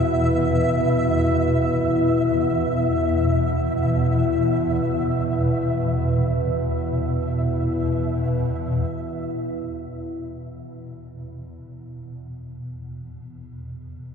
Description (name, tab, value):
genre	dark ambient drone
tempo	free time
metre	none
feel	none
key	unclear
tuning	A4 = 440 Hz
part	deep dark ambient pad	sustained chords	0.0-8.9 s	E4 to F#5	-24 LUFS	left 2 dB	chorus, built-in reverb
part	swarming drone	drone	0.0-14.1 s	E2 to B2	-24 LUFS	equal	built-in reverb
part	flickering grainy texture	texture	0.0-8.9 s	E5	-28 LUFS	right 2 dB	built-in reverb
room	wet cathedral reverb, RT60 5.9 s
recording	none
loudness	-20 LUFS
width	side -6 dB against mid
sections	0.0-8.9 A section; 8.9-14.1 A section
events	none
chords	0.0 E5